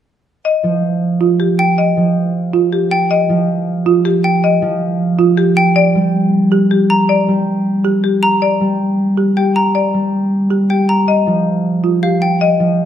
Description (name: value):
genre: classical, minimalist pattern music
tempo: 316 BPM (eighths)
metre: 7/8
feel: straight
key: unclear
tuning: A4 = 440 Hz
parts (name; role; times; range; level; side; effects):
- marimba with hard mallets; melody; 0.5-12.7 s; G4 to Eb5; -18 LUFS; left 6 dB; none
- concert harp; accompaniment; 0.6-12.9 s; F3 to G3; -14 LUFS; right 1 dB; none
- folk marimba with medium hard mallets; arpeggios; 1.2-12.1 s; F4 to G4; -18 LUFS; right 9 dB; none
- xylophone with rubber mallets; arpeggios; 1.6-12.5 s; F5 to Bb5; -18 LUFS; equal; none
room: moderate recital hall reverb, RT60 1.4 s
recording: close, detailed microphones, lossy compression artefacts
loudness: -12 LUFS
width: side -10 dB against mid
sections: 0.4-12.9 A section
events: none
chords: 0.4 Fsus2; 5.8 Gm7; 11.1 Fsus2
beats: | 0.44 0.63 0.82 1.01 1.20 1.39 1.58 | 1.77 1.96 2.15 2.34 2.53 2.72 2.91 | 3.10 3.29 3.48 3.67 3.86 4.05 4.24 | 4.43 4.62 4.81 5.00 5.19 5.38 5.57 | 5.76 5.95 6.14 6.33 6.52 6.71 6.90 | 7.09 7.28 7.47 7.66 7.85 8.04 8.23 | 8.42 8.61 8.80 8.99 9.18 9.37 9.56 | 9.75 9.94 10.13 10.32 10.51 10.70 10.89 | 11.08 11.27 11.46 11.65 11.84 12.03 12.22 | 12.41 12.60 12.79